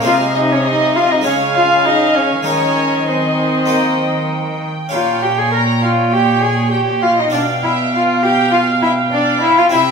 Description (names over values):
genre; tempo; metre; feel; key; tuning
classical, baroque-style concerto movement with solo episodes; 100 BPM; 4/4; straight; Ab major; A4 = 440 Hz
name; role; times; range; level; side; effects
rich chamber violin section; melody; 0.0-9.9 s; G5 to Ab5; -26 LUFS; right 2 dB; none
warm cello; melody; 0.0-9.8 s; C4 to Bb4; -16 LUFS; left 1 dB; none
warm chamber violin section; second line; 0.0-9.9 s; C5 to Bb5; -20 LUFS; equal; none
harpsichord; accompaniment; 0.0-9.9 s; Bb2 to Ab4; -24 LUFS; left 3 dB; none
warm chamber viola section; accompaniment; 0.0-9.9 s; Db5 to F5; -20 LUFS; right 1 dB; none
warm chamber cello section; bass; 0.0-9.9 s; Bb2 to Eb3; -20 LUFS; right 1 dB; none
room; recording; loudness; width
wet stone room reverb, RT60 1.0 s; minimal, uncompressed stereo recording; -12 LUFS; side -5 dB against mid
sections
0.0-9.9 A section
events
none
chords
0.1 Ab/C; 1.2 Db; 2.5 Ab/Eb; 3.7 Eb; 4.9 Gdim/Bb; 7.3 G7/B